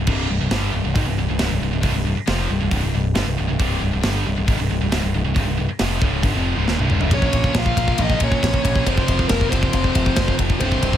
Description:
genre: heavy metal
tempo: 136 BPM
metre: 4/4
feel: straight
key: unclear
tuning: A4 = 438 Hz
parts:
  - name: scooped high-gain guitar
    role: riff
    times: 0.0-11.0 s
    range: C2 to Bb3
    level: -28 LUFS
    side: left 11 dB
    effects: distortion
  - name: scooped high-gain guitar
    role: riff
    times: 0.0-11.0 s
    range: C2 to Bb3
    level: -26 LUFS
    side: right 10 dB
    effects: distortion
  - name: growling picked electric bass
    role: bass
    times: 0.0-11.0 s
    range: C1 to Bb1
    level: -22 LUFS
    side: equal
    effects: overdrive
  - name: raw garage guitar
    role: riff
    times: 0.1-11.0 s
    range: C2 to Bb3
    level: -28 LUFS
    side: left 1 dB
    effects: overdrive
  - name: tight metal drum kit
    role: drums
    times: 0.1-11.0 s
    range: crash cymbal, hi-hat, kick drum, ride cymbal, snare drum, toms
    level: -22 LUFS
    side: equal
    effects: none
  - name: bluesy overdriven lead guitar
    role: melody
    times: 7.1-11.0 s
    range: Bb4 to F5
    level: -24 LUFS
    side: left 2 dB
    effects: distortion, tape echo
  - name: dark smooth lead guitar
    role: second line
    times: 7.1-11.0 s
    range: Bb3 to F4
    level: -30 LUFS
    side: right 2 dB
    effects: overdrive
room: little or no reverb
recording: none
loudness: -17 LUFS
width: side -10 dB against mid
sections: 0.0-7.1 A section; 7.1-11.0 B section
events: drum fill 6.7-7.1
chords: 0.0 Cm; 7.1 Bbm; 8.9 F5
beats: | 0.07 0.51 0.95 1.39 | 1.83 2.27 2.71 3.15 | 3.60 4.04 4.48 4.92 | 5.36 5.80 6.24 6.67 | 7.11 7.55 7.99 8.43 | 8.86 9.30 9.74 10.17 | 10.61

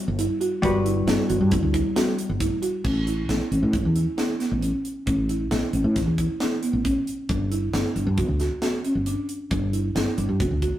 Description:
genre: progressive instrumental, band music in an uneven meter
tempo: 135 BPM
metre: 5/4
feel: straight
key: unclear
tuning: A4 = 435 Hz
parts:
  - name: vintage hollow-body jazz guitar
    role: accompaniment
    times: 0.0-2.8 s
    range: G3 to B4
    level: -27 LUFS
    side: left 4 dB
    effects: none
  - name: buzzing marimba with soft mallets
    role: arpeggios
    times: 0.0-10.8 s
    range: B3 to F#4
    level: -26 LUFS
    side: right 2 dB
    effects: none
  - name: woody fretless electric bass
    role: bass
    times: 0.1-10.7 s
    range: G1 to A2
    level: -24 LUFS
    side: equal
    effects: none
  - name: crisp fusion drum kit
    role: drums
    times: 0.2-10.7 s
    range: crash cymbal, hi-hat, kick drum, snare drum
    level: -28 LUFS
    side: equal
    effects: none
room: moderate stone room reverb, RT60 1.1 s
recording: rough rehearsal-room recording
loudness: -21 LUFS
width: side -12 dB against mid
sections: 0.0-2.8 A section; 2.8-10.8 B section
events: none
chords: 0.0 Gmaj7; 2.8 A; 7.3 G5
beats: 0.18 | 0.63 1.07 1.51 1.96 2.40 | 2.85 3.29 3.74 4.18 4.63 | 5.07 5.51 5.96 6.40 6.85 | 7.29 7.74 8.18 8.62 9.07 | 9.51 9.96 10.40

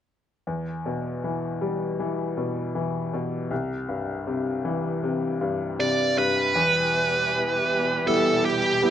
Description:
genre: pop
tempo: 79 BPM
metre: 4/4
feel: straight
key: E minor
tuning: A4 = 440 Hz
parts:
  - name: bright upright piano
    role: accompaniment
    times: 0.5-8.9 s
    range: C2 to E4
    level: -26 LUFS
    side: left 2 dB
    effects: none
  - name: bluesy overdriven lead guitar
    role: melody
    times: 5.8-8.9 s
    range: G4 to D5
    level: -21 LUFS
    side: right 2 dB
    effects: distortion
  - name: warm studio string section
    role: sustained chords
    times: 6.5-8.9 s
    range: B2 to G4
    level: -29 LUFS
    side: right 2 dB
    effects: none
room: moderate studio reverb, RT60 0.6 s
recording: rough home demo mix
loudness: -23 LUFS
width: side -10 dB against mid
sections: 0.5-6.5 A section; 6.5-8.9 B section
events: none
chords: 0.5 Em; 3.5 C; 6.5 Em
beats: | 0.47 1.23 1.99 2.75 | 3.51 4.27 5.03 5.79 | 6.54 7.30 8.06 8.82

